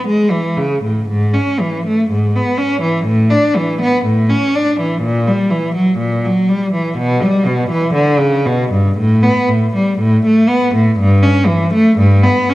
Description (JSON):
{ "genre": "classical, baroque-style suite movement for unaccompanied cello", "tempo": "61 BPM", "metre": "4/4", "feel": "rubato", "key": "B minor from 5.0 s", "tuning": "A4 = 442 Hz", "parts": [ { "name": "rich cello", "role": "solo", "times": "0.0-12.5 s", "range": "G2 to D4", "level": "-12 LUFS", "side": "equal", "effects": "none" } ], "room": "moderate recital hall reverb, RT60 1.7 s", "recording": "dark, warm production", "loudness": "-12 LUFS", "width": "side -17 dB against mid", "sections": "0.0-12.5 A section", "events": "none", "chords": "none", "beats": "0.07 | 1.09 2.09 3.06 4.03 | 5.00 5.98 6.96 7.94 | 8.96 9.97 10.97 11.95" }